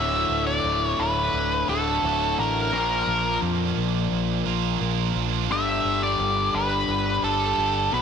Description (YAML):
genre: rock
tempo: 86 BPM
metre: 4/4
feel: straight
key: unclear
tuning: A4 = 440 Hz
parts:
  - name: octave-fuzz lead guitar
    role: melody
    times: 0.0-8.0 s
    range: A4 to E5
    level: -24 LUFS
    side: left 1 dB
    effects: wah, distortion, slapback echo
  - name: overdriven semi-hollow guitar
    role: riff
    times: 0.0-8.0 s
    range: D2 to B3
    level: -28 LUFS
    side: left 10 dB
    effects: none
  - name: tight distorted guitar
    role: riff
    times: 0.0-8.0 s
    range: D2 to B4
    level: -28 LUFS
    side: right 15 dB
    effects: distortion
  - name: growling fingered electric bass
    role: bass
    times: 0.0-8.0 s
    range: D1 to F2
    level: -29 LUFS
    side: right 2 dB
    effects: overdrive
room: moderate echo chamber reverb, RT60 2.2 s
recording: 1960s-style stereo with parts hard left and right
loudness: -21 LUFS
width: side -7 dB against mid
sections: 0.0-8.0 A section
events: none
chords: 0.0 D; 2.7 Bb; 5.5 Gsus2